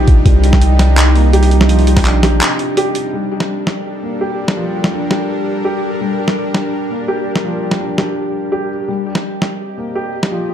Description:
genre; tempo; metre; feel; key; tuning
half-time drum and bass; 167 BPM; 4/4; half-time; G minor; A4 = 440 Hz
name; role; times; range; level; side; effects
bowed-like drone; sustained chords; 0.0-10.5 s; C3 to Eb5; -20 LUFS; equal; built-in reverb, vintage 12-bit sampler grit, sidechain pumping
felt-muted upright piano; arpeggios; 0.0-10.5 s; F3 to G4; -20 LUFS; equal; low-pass filter, ping-pong delay
long sustained 808-style bass; bass; 0.0-2.4 s; Bb1 to C2; -11 LUFS; equal; none
pulsing gated texture; texture; 0.0-3.1 s; F3 to F4; -31 LUFS; left 4 dB; none
boom bap sampler-style drum kit; drums; 0.1-10.3 s; handclaps, hi-hat, snare drum; -17 LUFS; equal; studio reverb
electronic kick drum; drums; 0.1-2.0 s; none; -11 LUFS; equal; studio reverb
room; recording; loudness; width
light reverb; dark, warm production; -13 LUFS; side -10 dB against mid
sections
0.0-3.1 A section; 3.1-10.5 B section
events
drop 0.0-3.1; break 2.4-3.1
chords
0.0 Cm; 3.1 Gm; 8.9 Cm

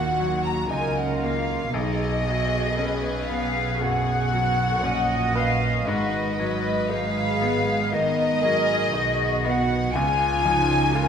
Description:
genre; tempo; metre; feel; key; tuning
cinematic; 58 BPM; 4/4; rubato; unclear; A4 = 439 Hz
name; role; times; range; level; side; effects
warm symphonic violin section; melody; 0.0-11.1 s; D#4 to Cb5; -32 LUFS; left 5 dB; none
dark studio violin section; second line; 0.0-11.1 s; D#5 to Bb5; -31 LUFS; left 2 dB; none
small flute group; second line; 0.0-11.1 s; Eb5 to Bb5; -25 LUFS; left 1 dB; none
bright grand piano; accompaniment; 0.0-11.1 s; B1 to B4; -28 LUFS; left 3 dB; none
rich studio viola section; accompaniment; 0.0-11.1 s; Cb4 to D#5; -31 LUFS; equal; none
dark chamber double bass section; bass; 0.0-11.1 s; Ab1 to Eb2; -29 LUFS; right 4 dB; none
dark studio cello section; bass; 0.0-11.1 s; Ab2 to Eb3; -30 LUFS; right 5 dB; none
room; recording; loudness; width
wet scoring stage reverb, RT60 1.6 s; none; -21 LUFS; side -7 dB against mid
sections
0.0-11.1 A section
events
none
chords
0.0 Ebm; 1.7 Badd9; 5.9 Abm7; 9.9 Db

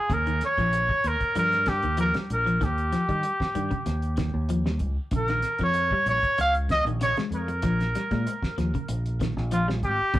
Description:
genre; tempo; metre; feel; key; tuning
afrobeat; 96 BPM; 4/4; straight; Bb dorian; A4 = 438 Hz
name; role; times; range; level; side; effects
clear trumpet; melody; 0.0-10.2 s; F4 to F5; -25 LUFS; equal; analog delay
clean electric guitar; arpeggios; 0.1-10.2 s; Db3 to Ab3; -30 LUFS; left 1 dB; none
fingered electric bass; bass; 0.1-10.2 s; Ab1 to Eb3; -28 LUFS; equal; none
cloth-damped thuddy drum kit; drums; 0.1-10.2 s; hi-hat, kick drum, snare drum; -32 LUFS; equal; none
room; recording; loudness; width
moderate small room ambience, RT60 0.5 s; rough rehearsal-room recording; -23 LUFS; side -15 dB against mid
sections
0.0-10.2 A section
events
none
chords
0.1 Eb; 5.1 Bbm

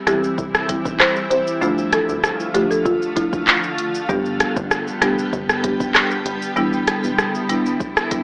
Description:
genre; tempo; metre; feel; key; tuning
dancehall; 97 BPM; 4/4; straight; C major; A4 = 441 Hz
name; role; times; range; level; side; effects
granular cloud pad; sustained chords; 0.0-8.2 s; D3 to G4; -28 LUFS; equal; built-in reverb, sidechain pumping
folk marimba with medium mallets; melody; 0.1-3.3 s; E4 to C5; -24 LUFS; equal; analog delay
marimba with medium mallets; accompaniment; 0.1-8.2 s; E3 to G4; -26 LUFS; equal; sidechain pumping
plucky analog bass; bass; 0.1-7.6 s; E1 to D2; -32 LUFS; equal; none
afro-pop drum kit; drums; 0.1-8.2 s; handclaps, hi-hat, kick drum, rim click, shaker; -21 LUFS; equal; none
room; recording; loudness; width
light reverb, digital ambience; dry, gritty hardware recording, transformer saturation, AM radio sound; -19 LUFS; mono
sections
0.0-8.2 A section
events
none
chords
0.0 C; 1.6 Dm; 4.1 G; 6.6 Em7

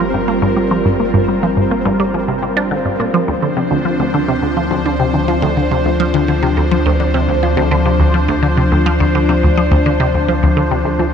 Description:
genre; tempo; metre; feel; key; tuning
ambient, sequencer-driven space music; 105 BPM; 4/4; straight; unclear; A4 = 440 Hz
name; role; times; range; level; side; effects
phased analog pad; sustained chords; 0.0-11.1 s; F3 to C5; -17 LUFS; left 1 dB; phaser, chorus
resonant blip pluck; riff; 0.0-11.1 s; D2 to D4; -16 LUFS; equal; phaser, analog delay
warm sub bass; bass; 0.0-11.1 s; G1 to D2; -20 LUFS; equal; none
pulsing gated texture; texture; 0.0-11.1 s; C4 to C5; -24 LUFS; left 1 dB; chorus, built-in reverb
room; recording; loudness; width
wet huge ambient reverb, RT60 8.0 s; none; -12 LUFS; side -7 dB against mid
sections
0.0-11.1 A section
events
fade-in on sub bass 0.0-11.1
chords
0.0 Gm7; 3.1 Dm7

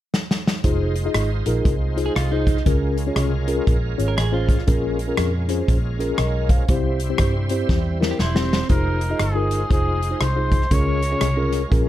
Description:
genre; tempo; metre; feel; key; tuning
uptempo gospel; 119 BPM; 4/4; swing 62% on 8ths; F minor; A4 = 441 Hz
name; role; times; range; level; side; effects
natural country drum kit; drums; 0.1-11.9 s; hi-hat, kick drum, rim click, snare drum; -21 LUFS; equal; none
mellow tine electric piano; accompaniment; 0.6-11.9 s; Bb2 to F5; -24 LUFS; left 2 dB; medium stereo tremolo
vintage muted fingered electric bass; bass; 0.6-11.9 s; E1 to G2; -23 LUFS; equal; none
bright tonewheel organ; sustained chords; 0.7-11.9 s; G3 to C5; -31 LUFS; right 3 dB; slow rotary speaker, overdrive, chorus vibrato
clean electric guitar; second line; 2.1-4.7, 8.1-8.7 s; C4 to Bb4; -31 LUFS; right 7 dB; none
warm trumpet; melody; 8.2-11.7 s; Ab4 to Db5; -26 LUFS; left 1 dB; none
room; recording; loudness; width
small room ambience; dark, warm production; -18 LUFS; side -13 dB against mid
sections
0.6-8.7 A section; 8.7-11.9 B section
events
drum fill 0.1-0.6, 7.7-8.7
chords
0.0 N.C.; 0.6 Fm7; 2.7 Db6; 4.7 Bbm7; 6.7 C; 8.7 Fm7; 10.7 Db6

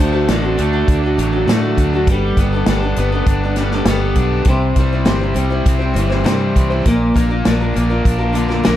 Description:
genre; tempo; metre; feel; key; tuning
folk rock and heartland rock; 100 BPM; 4/4; straight; unclear; A4 = 441 Hz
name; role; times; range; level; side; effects
overdriven slide guitar; second line; 0.0-2.3 s; C4 to C5; -24 LUFS; right 9 dB; plate reverb
picked acoustic archtop guitar; accompaniment; 0.0-8.8 s; Bb2 to C5; -20 LUFS; left 2 dB; none
crunchy overdriven guitar; riff; 0.0-8.8 s; Bb2 to D4; -21 LUFS; right 1 dB; none
fingered electric bass; bass; 0.0-8.8 s; G1 to A2; -18 LUFS; equal; none
natural country drum kit; drums; 0.3-8.8 s; hi-hat, kick drum, snare drum; -17 LUFS; equal; none
room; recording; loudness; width
light reverb; dark, warm production; -13 LUFS; side -12 dB against mid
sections
0.0-8.8 A section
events
none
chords
0.0 D; 2.1 Gadd9; 4.5 C; 6.9 Bb

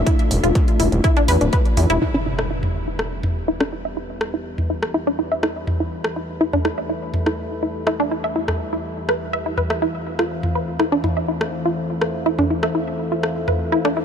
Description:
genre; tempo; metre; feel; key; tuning
melodic techno; 123 BPM; 4/4; straight; E phrygian; A4 = 440 Hz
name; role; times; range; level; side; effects
dark analog pad; sustained chords; 0.0-14.0 s; E3 to B5; -27 LUFS; left 1 dB; chorus, sidechain pumping
wide unison pluck; arpeggios; 0.0-14.0 s; D4 to E5; -22 LUFS; equal; sidechain pumping, tape echo
gritty driven synth bass; bass; 0.0-2.0 s; D1 to E2; -18 LUFS; equal; sidechain pumping
electronic kick drum; drums; 0.1-1.6 s; none; -18 LUFS; equal; distortion, overdrive
techno drum kit; drums; 0.1-13.9 s; hi-hat, rim click, toms; -25 LUFS; equal; overdrive
impact and riser; sound effects; 2.0-4.0, 14.0 s; none; -28 LUFS; equal; none
room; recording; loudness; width
light reverb; none; -18 LUFS; side -7 dB against mid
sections
0.0-2.0 A section; 2.0-14.0 B section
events
impact 2.0-4.0; filter sweep on analog synth pad 2.0-14.0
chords
0.0 F/E; 2.0 Em; 9.8 F/E

